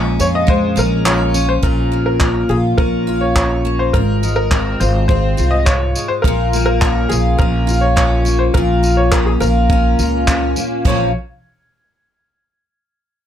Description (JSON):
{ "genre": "acoustic pop", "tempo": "104 BPM", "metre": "4/4", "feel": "straight", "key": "Bb minor", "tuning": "A4 = 440 Hz", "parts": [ { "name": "picked steel-string acoustic guitar", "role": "accompaniment", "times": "0.0-11.1 s", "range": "Ab2 to F4", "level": "-18 LUFS", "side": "left 1 dB", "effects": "double-tracked left and right" }, { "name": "upright bass", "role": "bass", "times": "0.0-11.1 s", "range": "Ab1 to F2", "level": "-17 LUFS", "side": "equal", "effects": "none" }, { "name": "bright upright piano", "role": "melody", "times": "0.2-11.1 s", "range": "Ab4 to Eb5", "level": "-20 LUFS", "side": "left 1 dB", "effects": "none" }, { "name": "compact cocktail drum kit", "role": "drums", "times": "0.2-11.0 s", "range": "crash cymbal, handclaps, kick drum, tambourine", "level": "-18 LUFS", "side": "equal", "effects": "none" } ], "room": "light reverb", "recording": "dark, warm production", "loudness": "-13 LUFS", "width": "side -10 dB against mid", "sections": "0.0-1.6 A section; 1.6-10.9 B section; 10.9-13.2 C section", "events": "none", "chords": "0.0 Bbm7; 1.6 Bbm; 3.9 Fm/Ab; 6.2 Bbm" }